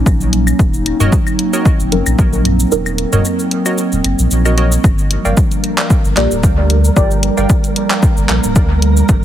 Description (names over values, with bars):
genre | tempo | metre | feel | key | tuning
dub techno | 113 BPM | 4/4 | swing 54% on 16ths | unclear | A4 = 440 Hz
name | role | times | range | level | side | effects
warbly tape-like pad | sustained chords | 0.0-9.2 s | F3 to E4 | -18 LUFS | right 2 dB | chorus, built-in reverb, vintage 12-bit sampler grit, sidechain pumping
warm sub bass | bass | 0.1-9.2 s | D1 to D2 | -15 LUFS | equal | sidechain pumping
deep house drum kit | drums | 0.1-9.2 s | cabasa, handclaps, hi-hat | -20 LUFS | equal | dub echo
electronic kick drum | drums | 0.1-9.2 s | none | -13 LUFS | equal | overdrive
electronic claves and toms | percussion | 0.5-4.6 s | none | -19 LUFS | left 2 dB | sidechain pumping on perc, sidechain pumping on toms, dub echo
wavetable chord stab | riff | 1.0-8.0 s | Gb4 to G5 | -24 LUFS | right 2 dB | cassette tape, sidechain pumping, dub echo
deep mellow chord stab | stabs | 1.9-2.9, 6.2-7.1 s | Gb3 to D5 | -20 LUFS | equal | chorus, phaser, sidechain pumping, dub echo
flickering grainy texture | texture | 5.4-9.2 s | Bb4 | -25 LUFS | right 1 dB | built-in reverb, sidechain pumping
room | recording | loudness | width
little or no reverb | heavily compressed radio sound | -11 LUFS | side -11 dB against mid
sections
0.0-4.8 A section; 4.8-9.2 A section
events
kick drops out 2.7-4.8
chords
0.0 Ebm7; 4.8 Gm7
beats
0.06 | 0.59 1.12 1.66 2.19 | 2.72 3.25 3.78 4.31 | 4.84 5.37 5.90 6.43 | 6.96 7.50 8.03 8.56 | 9.09